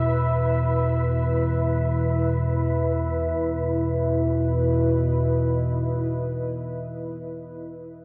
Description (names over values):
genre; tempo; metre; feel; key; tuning
dark ambient drone; free time; none; none; unclear; A4 = 439 Hz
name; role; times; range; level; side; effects
deep dark ambient pad; sustained chords; 0.0-7.2 s; E4 to E5; -28 LUFS; equal; chorus, built-in reverb
deep rumbling drone; drone; 0.0-6.8 s; E2 to B2; -26 LUFS; equal; built-in reverb
wind-like tuned noise texture; texture; 0.0-3.4 s; B4; -37 LUFS; equal; built-in reverb
room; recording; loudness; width
wet huge ambient reverb, RT60 8.0 s; in a vast, echoing space; -24 LUFS; mono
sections
0.0-3.4 A section; 3.4-8.0 B section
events
none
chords
0.0 E5